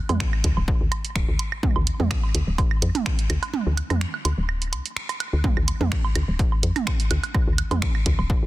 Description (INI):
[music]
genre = minimal techno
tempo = 126 BPM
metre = 4/4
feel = swing 54% on 16ths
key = D minor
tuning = A4 = 440 Hz
[part]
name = woody FM bass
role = bass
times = 0.1-8.5 s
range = D1 to F2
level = -24 LUFS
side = equal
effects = tube saturation, sidechain pumping
[part]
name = punchy analog drum machine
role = drums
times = 0.1-8.2 s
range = finger snaps, hi-hat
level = -31 LUFS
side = right 3 dB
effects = soft clipping on snare
[part]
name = electronic toms and woodblock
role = percussion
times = 0.1-8.3 s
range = none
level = -29 LUFS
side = right 7 dB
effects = tape echo
[part]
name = electronic kick drum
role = drums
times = 0.2-8.4 s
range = none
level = -23 LUFS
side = equal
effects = none
[sound]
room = little or no reverb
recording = dense, heavily limited modern master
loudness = -21 LUFS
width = side -16 dB against mid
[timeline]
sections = 0.0-8.5 A section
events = break 3.5-5.4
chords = none